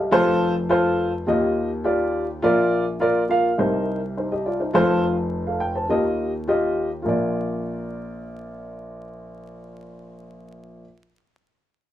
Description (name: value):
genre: soul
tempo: 104 BPM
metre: 4/4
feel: straight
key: Bb major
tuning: A4 = 440 Hz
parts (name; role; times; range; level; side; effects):
- dark upright piano; solo; 0.0-10.8 s; F1 to A5; -20 LUFS; equal; none
room: wet studio ambience, RT60 0.5 s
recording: band playing live in one room, vinyl crackle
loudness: -19 LUFS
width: side -12 dB against mid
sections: 0.0-2.4 A section; 2.4-7.1 B section; 7.1-9.4 C section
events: none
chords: 0.1 F; 1.3 Ebadd9; 2.4 Bb; 3.6 Cm7; 4.7 F; 5.9 Ebadd9; 7.1 Bb